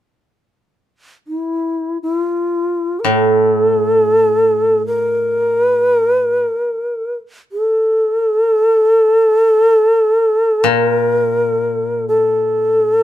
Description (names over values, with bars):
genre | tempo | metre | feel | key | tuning
japanese traditional, Japanese chamber music | free time | none | none | unclear | A4 = 439 Hz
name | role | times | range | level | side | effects
breathy bright long shakuhachi | melody | 1.3-13.0 s | E4 to Bb4 | -13 LUFS | equal | none
koto | accompaniment | 3.0-13.0 s | A2 to Bb2 | -20 LUFS | equal | none
room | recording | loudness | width
light reverb | none | -12 LUFS | side -12 dB against mid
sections
0.0-13.0 A section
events
none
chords
none